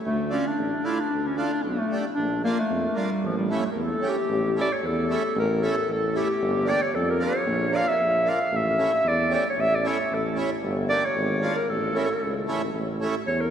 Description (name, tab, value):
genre	klezmer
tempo	114 BPM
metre	2/4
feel	straight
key	A phrygian dominant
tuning	A4 = 439 Hz
part	breathy clarinet	melody	0.0-13.5 s	F3 to F5	-24 LUFS	equal	none
part	warm tuba	bass	0.1-13.5 s	G1 to F2	-28 LUFS	equal	none
part	accordion	accompaniment	0.3-13.2 s	A3 to G4	-30 LUFS	right 3 dB	none
room	wet cathedral reverb, RT60 5.4 s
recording	recorded in a church or concert hall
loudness	-22 LUFS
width	side -8 dB against mid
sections	0.0-4.3 A section; 4.3-12.8 B section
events	none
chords	0.1 Dm; 2.2 Bb; 3.2 A; 6.4 Gm; 7.5 Bb; 8.5 A; 10.6 Gm; 11.7 A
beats	| 0.06 0.59 | 1.12 1.65 | 2.18 2.71 | 3.24 3.77 | 4.30 4.83 | 5.35 5.88 | 6.41 6.94 | 7.47 7.99 | 8.52 9.05 | 9.58 10.11 | 10.64 11.17 | 11.70 12.23 | 12.76 13.29